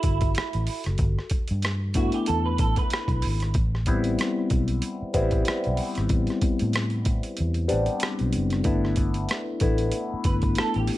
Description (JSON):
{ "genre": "R&B, neo-soul", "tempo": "94 BPM", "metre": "4/4", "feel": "swing 55% on 16ths", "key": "A dorian", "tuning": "A4 = 441 Hz", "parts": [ { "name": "electric guitar through a small old amp", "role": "second line", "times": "0.0-3.5, 10.3-11.0 s", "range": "E4 to B4", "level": "-30 LUFS", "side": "right 6 dB", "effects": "ensemble chorus" }, { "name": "barky tine electric piano", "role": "accompaniment", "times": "0.0-11.0 s", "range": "G3 to F#4", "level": "-27 LUFS", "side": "left 2 dB", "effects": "overdrive, phaser" }, { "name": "boom bap sampler-style drum kit", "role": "drums", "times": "0.0-11.0 s", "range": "hi-hat, kick drum, rim click", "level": "-26 LUFS", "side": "equal", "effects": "none" }, { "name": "vintage muted fingered electric bass", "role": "bass", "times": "0.1-10.9 s", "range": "F#1 to A2", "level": "-26 LUFS", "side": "equal", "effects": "none" } ], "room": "digital ambience", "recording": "none", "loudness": "-22 LUFS", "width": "side -16 dB against mid", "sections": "0.0-11.0 A section", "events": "kick muted 7.4-8.7", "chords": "0.0 G6; 3.5 Am7; 8.7 G6" }